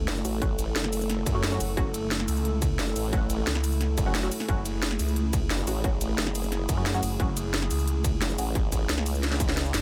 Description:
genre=dark technical drum and bass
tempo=177 BPM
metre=4/4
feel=straight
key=F# minor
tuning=A4 = 440 Hz
part: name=dark analog pad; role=sustained chords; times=0.0-9.8 s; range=A3 to A4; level=-35 LUFS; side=equal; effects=chorus, sidechain pumping
part: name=phased detuned saw bass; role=bass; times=0.0-9.8 s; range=F#1 to C#2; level=-31 LUFS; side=equal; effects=phaser, overdrive, sidechain pumping
part: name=formant-sweep wobble bass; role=bass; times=0.1-9.7 s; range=F#1 to F#2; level=-32 LUFS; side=equal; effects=chorus
part: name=drum and bass drum kit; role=drums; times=0.1-9.8 s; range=cabasa, hi-hat, ride cymbal, snare drum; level=-34 LUFS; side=equal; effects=none
part: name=filtered dub chord stab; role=stabs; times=0.2-8.5 s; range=F#3 to F#4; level=-38 LUFS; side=equal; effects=phaser, subtle chorus, cassette tape, digital delay
part: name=electronic kick drum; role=drums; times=0.4-9.5 s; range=none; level=-31 LUFS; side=equal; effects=distortion
room=light reverb, digital ambience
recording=none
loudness=-27 LUFS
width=mono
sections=0.0-9.8 A section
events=drum fill 9.2-9.8; kick drops out 9.6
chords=0.0 F#madd9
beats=0.08 | 0.42 0.76 1.09 1.43 | 1.77 2.11 2.45 2.79 | 3.13 3.47 3.81 4.15 | 4.49 4.82 5.16 5.50 | 5.84 6.18 6.52 6.86 | 7.20 7.54 7.88 8.21 | 8.55 8.89 9.23 9.57

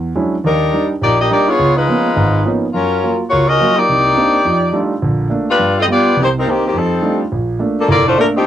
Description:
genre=jazz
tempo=209 BPM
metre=4/4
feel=swing 62% on 8ths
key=Bb major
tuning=A4 = 440 Hz
part: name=warm concert grand piano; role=accompaniment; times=0.0-8.5 s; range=F1 to F4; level=-16 LUFS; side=right 2 dB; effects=cassette tape
part: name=mellow saxophone section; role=melody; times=0.5-8.5 s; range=Eb3 to Eb5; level=-13 LUFS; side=left 2 dB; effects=cassette tape
room=wet booth ambience, RT60 0.2 s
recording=home recording on cassette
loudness=-12 LUFS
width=side -11 dB against mid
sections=0.0-7.3 A section; 7.3-8.5 A section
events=none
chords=0.4 Ebmaj7; 1.6 Db13; 2.7 Gbmaj7; 3.9 Cm9; 4.5 F13; 5.0 Bbmaj7; 5.6 G7; 6.2 Cm7; 6.7 F13; 7.3 Bbmaj7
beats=0.15 | 0.44 0.72 1.01 1.30 | 1.58 1.87 2.16 2.44 | 2.73 3.02 3.31 3.59 | 3.88 4.17 4.45 4.74 | 5.02 5.31 5.60 5.88 | 6.17 6.46 6.74 7.03 | 7.32 7.60 7.89 8.18 | 8.46

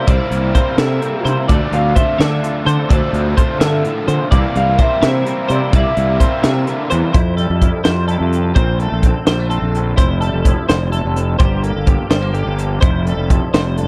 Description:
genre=math rock and midwest emo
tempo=85 BPM (dotted quarters)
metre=6/8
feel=straight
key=unclear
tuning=A4 = 441 Hz
part: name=electric guitar through a small old amp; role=melody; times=0.0-6.6 s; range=A4 to F5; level=-23 LUFS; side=equal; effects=slapback echo
part: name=direct-recorded clean electric guitar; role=accompaniment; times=0.0-13.9 s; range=D2 to A4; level=-27 LUFS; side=equal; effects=ensemble chorus
part: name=twelve-string electric guitar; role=arpeggios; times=0.0-13.9 s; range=A4 to E5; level=-26 LUFS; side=equal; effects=analog chorus
part: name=cranked stack guitar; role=riff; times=0.0-7.1 s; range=C3 to E4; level=-26 LUFS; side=equal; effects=overdrive
part: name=fuzz fingered electric bass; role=bass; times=0.1-13.8 s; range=F1 to D3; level=-20 LUFS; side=equal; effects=overdrive
part: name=crisp fusion drum kit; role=drums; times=0.1-13.9 s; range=hi-hat, kick drum, snare drum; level=-17 LUFS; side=equal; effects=none
room=little or no reverb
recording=none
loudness=-16 LUFS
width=mono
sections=0.0-7.1 A section; 7.1-13.9 B section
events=none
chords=0.0 C7; 1.5 Dm9; 4.3 C7; 7.1 Fmaj9; 8.6 Bbmaj9; 10.0 Fmaj9; 11.4 C7sus4/G; 12.8 Fmaj9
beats=| 0.07 0.78 | 1.49 2.19 | 2.90 3.60 | 4.31 5.02 | 5.72 6.43 | 7.14 7.85 | 8.56 9.27 | 9.98 10.69 | 11.40 12.11 | 12.82 13.54

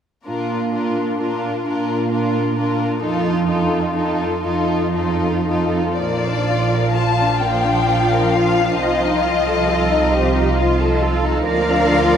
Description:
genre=classical, slow romantic movement for string orchestra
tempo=36-45 BPM (dotted quarters)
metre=6/8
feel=rubato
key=Bb major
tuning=A4 = 438 Hz
part: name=warm studio violin section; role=melody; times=0.3-12.2 s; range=A4 to A5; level=-22 LUFS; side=left 5 dB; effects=none
part: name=warm studio violin section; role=second line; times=0.3-12.2 s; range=Bb3 to F5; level=-21 LUFS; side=left 1 dB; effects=none
part: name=warm studio viola section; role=accompaniment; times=0.3-12.2 s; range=F3 to F4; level=-22 LUFS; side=equal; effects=none
part: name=rich studio cello section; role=bass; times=0.3-12.2 s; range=F2 to Bb4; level=-23 LUFS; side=right 6 dB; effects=none
part: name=rich studio double bass section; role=bass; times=6.0-12.2 s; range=Bb1 to D2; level=-21 LUFS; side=right 3 dB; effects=none
room=wet cathedral reverb, RT60 6.8 s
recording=in a vast, echoing space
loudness=-16 LUFS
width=side -8 dB against mid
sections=0.3-6.0 A section; 6.0-12.2 B section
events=none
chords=0.3 Bb; 3.0 F7; 6.0 Bb; 8.8 F7/C; 11.4 Bb/D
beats=| 0.26 1.65 | 3.01 4.43 | 5.99 7.40 | 8.79 10.11 | 11.45

